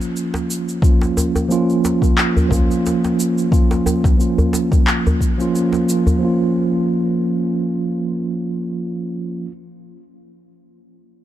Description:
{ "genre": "organic downtempo", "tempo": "89 BPM", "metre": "4/4", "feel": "swing 55% on 16ths", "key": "Bb minor pentatonic", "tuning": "A4 = 440 Hz", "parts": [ { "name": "mellow tine electric piano", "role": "accompaniment", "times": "0.0-9.5 s", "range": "F3 to F4", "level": "-18 LUFS", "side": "right 1 dB", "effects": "medium stereo tremolo, sidechain pumping, low-pass filter, ping-pong delay" }, { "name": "electronic cabasa and handclaps", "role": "drums", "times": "0.0-6.2 s", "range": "none", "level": "-25 LUFS", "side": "left 1 dB", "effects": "overdrive" }, { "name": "djembe", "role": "percussion", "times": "0.3-6.2 s", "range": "none", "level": "-21 LUFS", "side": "equal", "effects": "none" }, { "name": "electronic kick drum", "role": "drums", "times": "0.8-5.4 s", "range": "none", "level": "-15 LUFS", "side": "left 1 dB", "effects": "overdrive" } ], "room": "light reverb, digital ambience", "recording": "dark, warm production", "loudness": "-15 LUFS", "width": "side -12 dB against mid", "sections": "0.0-6.2 A section; 6.2-8.9 B section", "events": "none", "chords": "0.0 Bbm" }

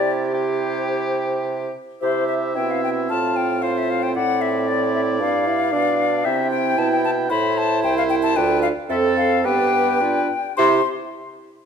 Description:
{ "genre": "quick classical-period movement for wind quintet", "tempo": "104-117 BPM", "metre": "4/4", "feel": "rubato", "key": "C major", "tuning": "A4 = 440 Hz", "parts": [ { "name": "hollow concert flute", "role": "melody", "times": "0.0-10.9 s", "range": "C5 to C6", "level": "-22 LUFS", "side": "left 7 dB", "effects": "none" }, { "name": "clear oboe", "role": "second line", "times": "0.0-10.8 s", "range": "G4 to G5", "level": "-27 LUFS", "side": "left 2 dB", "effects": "none" }, { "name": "clear French horn", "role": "accompaniment", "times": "0.0-10.8 s", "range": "B3 to G4", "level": "-25 LUFS", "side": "right 2 dB", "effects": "none" }, { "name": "clear clarinet", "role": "accompaniment", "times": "0.0-10.8 s", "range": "D4 to A4", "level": "-26 LUFS", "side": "right 9 dB", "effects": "none" }, { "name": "mellow bassoon", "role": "bass", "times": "0.0-10.8 s", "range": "C2 to C3", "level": "-25 LUFS", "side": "right 3 dB", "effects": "none" } ], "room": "wet recital hall reverb, RT60 1.7 s", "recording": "none", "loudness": "-18 LUFS", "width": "side -7 dB against mid", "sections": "0.0-2.0 A section; 2.0-10.6 B section; 10.6-11.7 C section", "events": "none", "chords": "0.0 C; 3.1 F/A; 4.2 D5/A; 5.2 G7; 6.2 C; 7.3 Am; 8.4 Dm7; 9.4 G7; 10.6 C" }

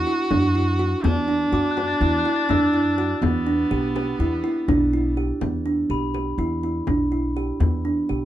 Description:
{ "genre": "contemporary instrumental, chamber music in an uneven meter", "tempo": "247 BPM (eighths)", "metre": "9/8", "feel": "straight", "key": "E minor", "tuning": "A4 = 439 Hz", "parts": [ { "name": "rich viola", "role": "second line", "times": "0.0-5.2 s", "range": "B3 to F#4", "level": "-26 LUFS", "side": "equal", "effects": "none" }, { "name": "kalimba", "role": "arpeggios", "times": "0.0-8.2 s", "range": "B3 to G4", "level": "-22 LUFS", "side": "right 2 dB", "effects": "none" }, { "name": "upright bass", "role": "bass", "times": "0.0-8.2 s", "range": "B1 to F#2", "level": "-25 LUFS", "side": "equal", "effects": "none" }, { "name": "frame drum", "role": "percussion", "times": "0.1-7.8 s", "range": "none", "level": "-28 LUFS", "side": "left 4 dB", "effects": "none" }, { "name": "glockenspiel with soft plastic mallets", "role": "texture", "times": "1.5-7.5 s", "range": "B5 to A6", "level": "-32 LUFS", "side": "left 8 dB", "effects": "none" } ], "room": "light reverb", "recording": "dark, warm production", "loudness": "-19 LUFS", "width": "side -12 dB against mid", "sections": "0.0-5.4 A section; 5.4-8.2 B section", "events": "none", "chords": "0.0 Bm (rootless); 3.2 Em7" }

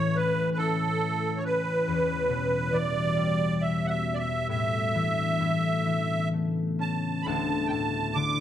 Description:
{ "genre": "celtic folk, Celtic slow air", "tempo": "62-70 BPM", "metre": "3/4", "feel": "rubato", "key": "unclear", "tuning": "A4 = 440 Hz", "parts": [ { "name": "musette accordion", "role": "melody", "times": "0.0-8.4 s", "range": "A4 to D6", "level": "-28 LUFS", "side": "right 2 dB", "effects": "none" }, { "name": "concert harp", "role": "accompaniment", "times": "0.0-8.4 s", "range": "D1 to E4", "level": "-28 LUFS", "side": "left 4 dB", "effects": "none" }, { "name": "deep dark ambient pad", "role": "sustained chords", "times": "0.0-7.2 s", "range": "E2 to C#4", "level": "-34 LUFS", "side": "equal", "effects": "chorus, built-in reverb" } ], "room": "moderate recital hall reverb, RT60 1.6 s", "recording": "close, detailed microphones", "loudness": "-24 LUFS", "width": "side -10 dB against mid", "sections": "0.0-7.3 A section; 7.3-8.4 A section", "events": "none", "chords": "0.0 A; 1.9 Em; 4.5 Asus4; 5.4 Aadd9; 7.3 D5" }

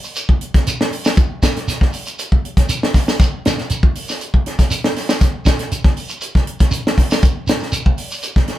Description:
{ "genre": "afrobeat", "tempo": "119 BPM", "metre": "4/4", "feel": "straight", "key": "none", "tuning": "none", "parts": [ { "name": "shekere", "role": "percussion", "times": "0.0-8.4 s", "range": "none", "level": "-24 LUFS", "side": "right 2 dB", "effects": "none" }, { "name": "tight funk drum kit", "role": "drums", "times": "0.2-8.6 s", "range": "hi-hat, kick drum, snare drum", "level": "-15 LUFS", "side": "equal", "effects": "none" } ], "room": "light reverb", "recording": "band playing live in one room", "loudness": "-14 LUFS", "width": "side -14 dB against mid", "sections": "0.0-8.6 A section", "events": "none", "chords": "none" }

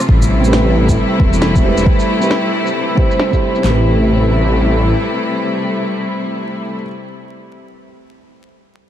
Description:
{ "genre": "future garage", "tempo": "135 BPM", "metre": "4/4", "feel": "swing 61% on 16ths", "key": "A minor", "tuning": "A4 = 441 Hz", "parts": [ { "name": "clear studio string section", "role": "sustained chords", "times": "0.0-6.8 s", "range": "C3 to E4", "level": "-17 LUFS", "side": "left 2 dB", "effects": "sidechain pumping" }, { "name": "electronic rim click, shaker and snare drum", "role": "drums", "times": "0.0-3.6 s", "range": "none", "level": "-23 LUFS", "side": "equal", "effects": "low-pass filter on perc, small room ambience, low-pass filter on snare" }, { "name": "swelling detuned saw bass", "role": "bass", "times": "0.1-4.9 s", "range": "E1 to A1", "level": "-14 LUFS", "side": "equal", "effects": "none" }, { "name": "deep house drum kit", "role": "drums", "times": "0.1-3.8 s", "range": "handclaps, kick drum, snare drum", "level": "-14 LUFS", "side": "equal", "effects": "small room ambience" }, { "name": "felt-muted upright piano", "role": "accompaniment", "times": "0.4-6.9 s", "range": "C4 to C5", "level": "-21 LUFS", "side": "right 4 dB", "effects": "sidechain pumping, low-pass filter, diffuse ambient delay" } ], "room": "moderate huge ambient reverb, RT60 3.8 s", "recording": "dreamy mix soaked in reverb, vinyl crackle", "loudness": "-12 LUFS", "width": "side -11 dB against mid", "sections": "0.1-3.6 A section; 3.6-7.2 B section", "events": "filter sweep on drum 0.1-3.6", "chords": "0.1 Am7" }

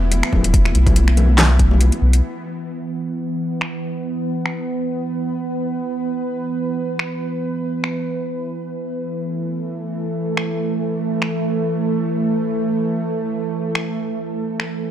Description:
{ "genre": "deep dubstep", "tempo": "142 BPM", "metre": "4/4", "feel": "swing 55% on 16ths, half-time", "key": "unclear", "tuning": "A4 = 445 Hz", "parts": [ { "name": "bowed-like drone", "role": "sustained chords", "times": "0.0-14.9 s", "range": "E3 to B4", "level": "-22 LUFS", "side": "right 2 dB", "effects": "built-in reverb" }, { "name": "soft dub sub bass", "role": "bass", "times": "0.0-2.2 s", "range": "D1 to B1", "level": "-14 LUFS", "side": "equal", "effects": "tube saturation" }, { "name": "deep house drum kit", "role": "drums", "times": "0.1-14.7 s", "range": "finger snaps, handclaps, hi-hat, snare drum", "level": "-21 LUFS", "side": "equal", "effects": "overdrive, low-pass filter on hats, low-pass filter on snare" }, { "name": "congas", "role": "percussion", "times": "0.1-2.0 s", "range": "none", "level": "-25 LUFS", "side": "left 3 dB", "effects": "dub echo" }, { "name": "electronic kick drum", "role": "drums", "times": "0.3-1.7 s", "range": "none", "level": "-17 LUFS", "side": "equal", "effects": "overdrive" } ], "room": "moderate echo chamber reverb, RT60 1.5 s", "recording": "dry, gritty hardware recording", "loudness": "-18 LUFS", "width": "side -11 dB against mid", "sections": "0.0-2.2 A section; 2.2-14.9 B section", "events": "drop 0.0-2.2", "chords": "0.0 E5" }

